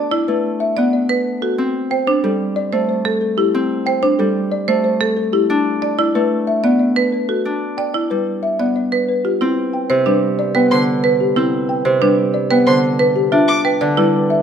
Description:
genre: classical, minimalist pattern music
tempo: 184 BPM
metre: 6/4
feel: straight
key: A minor, C major from 9.4 s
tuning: A4 = 440 Hz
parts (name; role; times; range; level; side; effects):
- folk marimba with soft mallets; melody; 0.0-14.4 s; G4 to A5; -20 LUFS; left 4 dB; none
- Celtic harp; accompaniment; 0.0-14.4 s; C3 to D4; -18 LUFS; left 1 dB; none
- marimba with medium hard mallets; arpeggios; 0.0-14.2 s; D4 to D5; -20 LUFS; right 6 dB; none
- dark French horn; second line; 9.4-14.4 s; B4; -25 LUFS; right 8 dB; none
- warm violin; arpeggios; 10.7-13.6 s; C6 to D6; -22 LUFS; left 1 dB; none
room: moderate large studio reverb, RT60 1.4 s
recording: none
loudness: -14 LUFS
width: side -8 dB against mid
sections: 0.0-9.4 A section; 9.4-14.4 B section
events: none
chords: 0.0 Bm7/A; 1.6 Am7; 5.5 Bm7/A; 7.5 G; 9.4 Cmaj7(no3); 13.3 G7

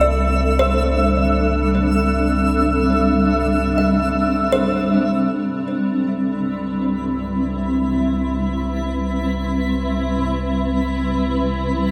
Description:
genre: ambient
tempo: free time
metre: none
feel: none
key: C major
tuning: A4 = 444 Hz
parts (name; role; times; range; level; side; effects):
- granular cloud pad; sustained chords; 0.0-11.9 s; G3 to E5; -21 LUFS; equal; built-in reverb
- kalimba; arpeggios; 0.0-5.7 s; C5 to E5; -27 LUFS; equal; tape echo
- round analog bass; bass; 0.0-11.9 s; C2; -26 LUFS; equal; none
- twinkling granular texture; texture; 0.0-11.9 s; B4 to E6; -27 LUFS; equal; built-in reverb
room: wet lush hall reverb, RT60 2.8 s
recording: none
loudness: -19 LUFS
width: mono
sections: 0.0-5.4 A section; 5.4-11.9 B section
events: filter sweep on ambient pad 0.0-5.4; fade-in on synth texture 5.4-11.9; fade-out on analog synth bass 5.4-11.9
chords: 0.0 C69

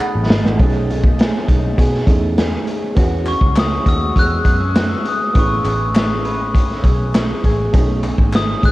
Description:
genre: indie pop, bedroom pop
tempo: 101 BPM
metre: 4/4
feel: straight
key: unclear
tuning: A4 = 440 Hz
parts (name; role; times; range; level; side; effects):
- dark upright piano; accompaniment; 0.0-8.7 s; A3 to B5; -26 LUFS; right 4 dB; cassette tape
- electric guitar through a small old amp; accompaniment; 0.0-8.7 s; B2 to B4; -25 LUFS; left 2 dB; analog chorus, warbly pitch drift, cassette tape
- group handclap; percussion; 0.0-8.5 s; none; -33 LUFS; left 2 dB; none
- vintage muted picked electric bass; bass; 0.2-8.7 s; G#1 to B2; -20 LUFS; equal; transformer saturation
- raw garage drum kit; drums; 0.3-8.7 s; hi-hat, kick drum, snare drum; -16 LUFS; equal; cassette tape
- glockenspiel with soft plastic mallets; melody; 3.3-8.7 s; C#6 to F#6; -22 LUFS; left 2 dB; analog chorus, cassette tape
room: little or no reverb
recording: home recording on cassette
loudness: -13 LUFS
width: side -18 dB against mid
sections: 0.6-3.0 A section; 3.0-8.7 B section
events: drum fill 0.0-0.6; upright piano fill 0.0-0.6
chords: 0.0 B13; 3.0 E69; 5.4 Amaj9; 7.7 B13

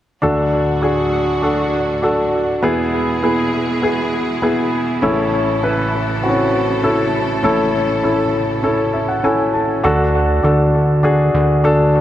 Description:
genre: piano-driven pop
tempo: 100 BPM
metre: 4/4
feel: straight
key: unclear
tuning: A4 = 441 Hz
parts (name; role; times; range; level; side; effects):
- warm baby grand piano; accompaniment; 0.2-12.0 s; A1 to A5; -15 LUFS; left 1 dB; dub echo
- rich studio string section; sustained chords; 0.2-9.8 s; A2 to A4; -24 LUFS; right 2 dB; none
- fat analog bass; bass; 9.8-12.0 s; D2; -15 LUFS; right 1 dB; none
room: moderate plate reverb, RT60 2.7 s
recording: echo-heavy mix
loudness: -14 LUFS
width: side -12 dB against mid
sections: 0.2-9.8 A section; 9.8-12.0 B section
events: grand piano fill 8.6-9.8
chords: 0.2 D; 2.6 E; 5.0 A; 9.8 D

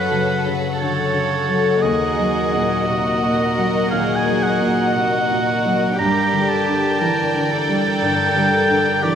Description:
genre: cinematic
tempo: 58 BPM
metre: 4/4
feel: rubato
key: unclear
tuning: A4 = 440 Hz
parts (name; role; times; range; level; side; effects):
- warm studio violin section; melody; 0.0-9.2 s; F#5 to G5; -28 LUFS; left 2 dB; none
- clear oboe; second line; 0.0-9.2 s; C#5 to Bb5; -21 LUFS; right 1 dB; none
- dark studio violin section; second line; 0.0-9.2 s; A4 to D#5; -26 LUFS; left 1 dB; none
- clear concert grand piano; accompaniment; 0.0-9.2 s; D#2 to G3; -22 LUFS; right 2 dB; none
- warm chamber viola section; accompaniment; 0.0-9.2 s; F#3 to A4; -26 LUFS; left 3 dB; none
- concert harp; arpeggios; 0.0-9.2 s; F#2 to D#5; -26 LUFS; left 7 dB; none
- warm studio cello section; bass; 0.0-9.2 s; F#4 to B4; -24 LUFS; right 1 dB; none
room: moderate stone room reverb, RT60 1.1 s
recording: none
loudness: -16 LUFS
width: side -8 dB against mid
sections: 0.0-9.2 A section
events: none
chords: 0.0 F#m; 1.8 D#m; 6.0 Gm

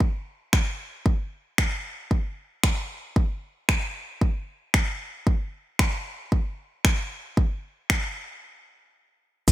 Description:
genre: dance-pop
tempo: 114 BPM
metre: 4/4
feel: straight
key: unclear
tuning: A4 = 445 Hz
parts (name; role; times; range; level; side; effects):
- pop drum kit; drums; 0.0-9.5 s; crash cymbal, finger snaps, kick drum, shaker; -22 LUFS; equal; gated reverb
- saturated sub bass; bass; 9.5 s; B1; -18 LUFS; equal; sidechain pumping
room: light reverb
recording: bright 1980s-style digital production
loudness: -24 LUFS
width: side -15 dB against mid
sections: 0.0-9.5 A section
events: break 8.4-9.5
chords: none

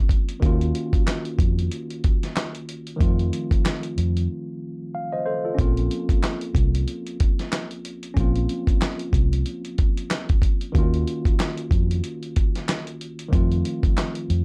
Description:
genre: hip hop, boom-bap hip-hop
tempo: 93 BPM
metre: 4/4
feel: swing 57% on 16ths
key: Bb harmonic minor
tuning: A4 = 439 Hz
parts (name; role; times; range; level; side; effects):
- mellow tine electric piano; accompaniment; 0.0-14.4 s; Eb3 to F5; -31 LUFS; equal; cassette tape, high-pass filter, low-pass filter
- dusty soul sampler-style drum kit; drums; 0.1-14.4 s; handclaps, hi-hat, kick drum, snare drum; -24 LUFS; equal; none
- vintage muted fingered electric bass; bass; 0.4-14.4 s; Bb1 to F2; -25 LUFS; equal; none
room: little or no reverb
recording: dark, warm production, faint mains hum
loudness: -23 LUFS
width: mono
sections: 0.0-14.4 A section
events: break 4.3-5.6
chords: 0.4 Ebm9; 3.0 F7; 5.6 Bbmadd9; 10.7 Ebm9; 13.3 F7

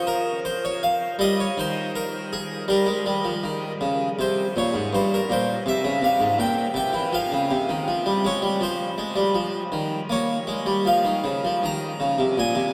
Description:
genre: classical, baroque-style suite movement for harpsichord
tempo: 81 BPM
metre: 4/4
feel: rubato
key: F minor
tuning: A4 = 440 Hz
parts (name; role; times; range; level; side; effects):
- harpsichord; solo; 0.0-12.7 s; G2 to Bb5; -24 LUFS; equal; none
room: wet huge ambient reverb, RT60 8.1 s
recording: in a vast, echoing space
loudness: -24 LUFS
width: mono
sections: 0.0-12.7 A section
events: none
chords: 0.0 Db; 1.2 Eb; 4.2 C7; 7.1 F5; 10.1 Bbm

